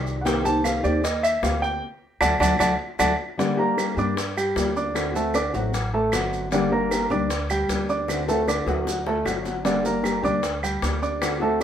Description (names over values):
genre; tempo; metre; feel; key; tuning
latin, Cuban son and guajira; 153 BPM; 4/4; straight; G minor; A4 = 439 Hz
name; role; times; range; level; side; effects
nylon-string guitar; accompaniment; 0.0-11.6 s; C3 to G4; -26 LUFS; left 2 dB; none
upright bass; bass; 0.0-11.6 s; G1 to G2; -30 LUFS; equal; none
maracas; percussion; 0.1-11.6 s; none; -36 LUFS; right 5 dB; none
dark grand piano; arpeggios; 0.2-11.6 s; D3 to D6; -24 LUFS; right 2 dB; none
bongos; percussion; 0.3-11.6 s; none; -31 LUFS; left 4 dB; none
claves; percussion; 0.6-11.4 s; none; -31 LUFS; right 4 dB; none
room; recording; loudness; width
moderate studio reverb, RT60 0.7 s; band playing live in one room; -21 LUFS; side -9 dB against mid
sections
0.0-3.4 A section; 3.4-11.6 B section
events
grand piano solo 0.0-3.4; band accent 1.8-3.4; drum fill 2.8-3.4, 8.1-9.7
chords
0.3 Cm7; 1.8 D; 3.4 Gm; 5.0 D7; 6.5 Gm; 8.1 D7; 9.7 Gm